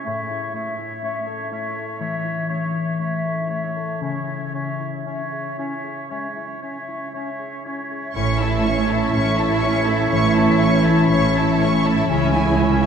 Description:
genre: cinematic, emotional film score for orchestra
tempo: 60 BPM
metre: 4/4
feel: uneven beats, rubato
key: A major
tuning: A4 = 440 Hz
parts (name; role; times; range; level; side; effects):
- clear clarinet; second line; 0.0-12.9 s; A3 to E4; -29 LUFS; right 2 dB; none
- clear oboe; second line; 0.0-12.9 s; C#5; -29 LUFS; right 1 dB; none
- small flute group; second line; 0.0-12.9 s; E5 to G#5; -29 LUFS; left 2 dB; none
- concert harp; arpeggios; 0.0-12.9 s; A2 to A4; -26 LUFS; left 5 dB; none
- warm symphonic violin section; melody; 8.1-12.9 s; E5 to C#6; -26 LUFS; left 3 dB; none
- rich symphonic violin section; second line; 8.2-12.9 s; C#5 to E5; -29 LUFS; left 2 dB; none
- rich symphonic viola section; accompaniment; 8.2-12.9 s; C#4 to E4; -25 LUFS; right 2 dB; none
- dark French horn section; sustained chords; 8.2-12.9 s; E3 to C#4; -26 LUFS; left 1 dB; none
- rich symphonic cello section; bass; 8.2-12.9 s; A2 to C#3; -23 LUFS; right 4 dB; none
- warm symphonic double bass section; bass; 8.2-12.9 s; A1 to C#2; -23 LUFS; right 4 dB; none
room: wet church reverb, RT60 3.9 s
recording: none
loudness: -19 LUFS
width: side -7 dB against mid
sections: 0.0-8.2 A section; 8.2-12.9 A section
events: none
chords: 0.1 A; 4.0 C#m; 8.2 A; 12.1 C#m

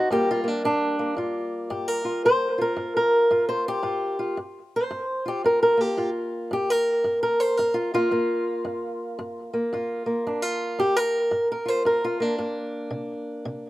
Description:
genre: acoustic country blues, solo or duo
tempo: 112 BPM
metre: 4/4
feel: swing 62% on 8ths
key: G minor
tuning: A4 = 440 Hz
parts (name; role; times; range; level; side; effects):
- fingerpicked steel-string acoustic guitar; solo; 0.0-13.7 s; G2 to C5; -22 LUFS; equal; slapback echo
room: light reverb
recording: recorded outdoors, with no room sound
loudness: -22 LUFS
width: side -17 dB against mid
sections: 0.0-4.4 A section; 4.4-13.7 A section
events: steel-string acoustic guitar solo 0.0-4.4, 4.4-13.7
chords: 0.1 Gm7; 12.9 C7(no3)

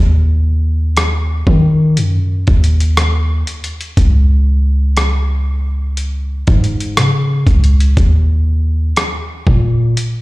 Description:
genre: contemporary R&B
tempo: 60 BPM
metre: 4/4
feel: straight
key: unclear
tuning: A4 = 440 Hz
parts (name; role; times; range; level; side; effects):
- warm 808-style bass; bass; 0.0-9.9 s; Db2 to Eb3; -12 LUFS; equal; none
- dusty soul sampler-style drum kit; drums; 1.0-10.2 s; hi-hat, kick drum, rim click; -15 LUFS; equal; none
room: digital ambience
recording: played on a big sound system in a bare room, large studio reverb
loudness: -11 LUFS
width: side -20 dB against mid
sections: 0.0-10.2 A section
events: none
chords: none

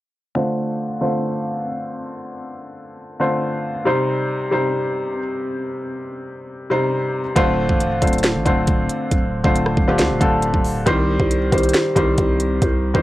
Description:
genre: hip hop, trap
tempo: 137 BPM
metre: 4/4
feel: half-time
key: D phrygian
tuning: A4 = 440 Hz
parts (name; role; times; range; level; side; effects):
- felt-muted upright piano; accompaniment; 0.3-13.0 s; C3 to C5; -19 LUFS; left 1 dB; low-pass filter, cassette tape
- growling 808-style bass; bass; 7.4-13.0 s; C1 to D2; -22 LUFS; equal; none
- trap drum kit; drums; 7.4-13.0 s; hi-hat, kick drum, rim click, snare drum; -20 LUFS; equal; cassette tape
room: light reverb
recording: home recording on cassette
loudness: -17 LUFS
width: side -16 dB against mid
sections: 0.4-7.4 A section; 7.4-13.0 B section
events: filter sweep on felt piano 0.4-7.4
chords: 0.4 Dm7; 3.9 Cm; 7.4 Dm7; 10.9 Cm

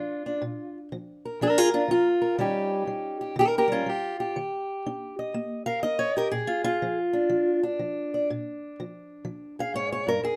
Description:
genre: acoustic country blues, solo or duo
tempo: 122 BPM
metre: 4/4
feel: swing 65% on 8ths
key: Bb mixolydian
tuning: A4 = 440 Hz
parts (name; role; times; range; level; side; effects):
- fingerpicked steel-string acoustic guitar; solo; 0.0-10.4 s; F2 to F5; -27 LUFS; equal; none
room: light reverb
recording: none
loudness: -27 LUFS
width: mono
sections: 0.0-10.4 A section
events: none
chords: 0.0 Bb; 2.4 Eb7; 6.3 Bb7

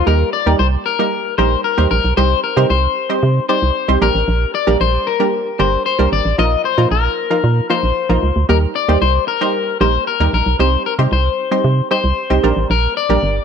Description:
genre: dance-pop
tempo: 114 BPM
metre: 4/4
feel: straight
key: Eb major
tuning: A4 = 442 Hz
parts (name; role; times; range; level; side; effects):
- electric guitar at the edge of break-up; melody; 0.0-13.4 s; Bb4 to Eb5; -17 LUFS; left 9 dB; wide subtle chorus
- punchy chord stab; accompaniment; 0.0-13.4 s; F3 to D5; -19 LUFS; right 3 dB; chorus
- organ-like FM bass; bass; 0.0-13.4 s; G1 to C3; -15 LUFS; right 2 dB; none
room: light reverb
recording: none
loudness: -13 LUFS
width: side -7 dB against mid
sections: 0.1-13.4 A section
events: drop 0.1-13.4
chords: 0.1 Eb; 2.2 Cm; 4.0 Gm; 6.4 Bbsus4; 8.5 Eb; 10.6 Cm; 12.4 Gm

